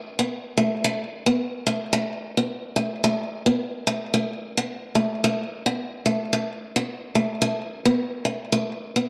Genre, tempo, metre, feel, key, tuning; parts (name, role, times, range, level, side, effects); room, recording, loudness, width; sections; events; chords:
highlife; 109 BPM; 4/4; swing 55% on 16ths; A4 = 439 Hz
picked steel-string acoustic guitar; solo; 0.2-9.1 s; A3 to B3; -25 LUFS; equal
wet spring reverb, RT60 2.1 s; -25 LUFS; mono
0.8-9.1 A section